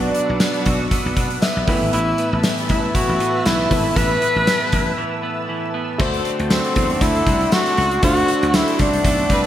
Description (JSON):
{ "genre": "1980s-style pop", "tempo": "118 BPM", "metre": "4/4", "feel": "swing 55% on 16ths", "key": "D mixolydian", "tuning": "A4 = 439 Hz", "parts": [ { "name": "breathy tenor saxophone", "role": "melody", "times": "0.0-9.5 s", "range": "C4 to B4", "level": "-20 LUFS", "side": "equal", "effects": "digital delay" }, { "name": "warm baby grand piano", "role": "accompaniment", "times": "0.0-9.5 s", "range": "A2 to E5", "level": "-25 LUFS", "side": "equal", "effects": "none" }, { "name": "lush unison pad", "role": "sustained chords", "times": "0.0-9.5 s", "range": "A4 to E6", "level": "-28 LUFS", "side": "equal", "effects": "chorus, phaser" }, { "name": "twelve-string electric guitar", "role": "riff", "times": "0.0-9.5 s", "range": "E3 to F#4", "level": "-27 LUFS", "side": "right 3 dB", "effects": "wide subtle chorus" }, { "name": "dry thumbed slap bass", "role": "bass", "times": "0.0-9.5 s", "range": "G#1 to B2", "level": "-23 LUFS", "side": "equal", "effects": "none" }, { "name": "gated 80s drum kit", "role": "drums", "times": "0.1-9.5 s", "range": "crash cymbal, hi-hat, kick drum, snare drum, tambourine", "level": "-20 LUFS", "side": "equal", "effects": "none" }, { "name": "tambourine", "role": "percussion", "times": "0.1-9.4 s", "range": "none", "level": "-39 LUFS", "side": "left 2 dB", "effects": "none" }, { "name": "rich studio violin section", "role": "second line", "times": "9.3-9.5 s", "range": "B4", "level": "-23 LUFS", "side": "equal", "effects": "none" } ], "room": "moderate lush hall reverb, RT60 2.5 s", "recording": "bright 1980s-style digital production, vinyl crackle", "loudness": "-16 LUFS", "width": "side -11 dB against mid", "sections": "0.0-6.0 A section; 6.0-9.5 B section", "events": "grand piano fill 1.2-1.9; break 5.0-6.0", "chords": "0.0 Bm; 1.7 Asus2; 6.0 D7" }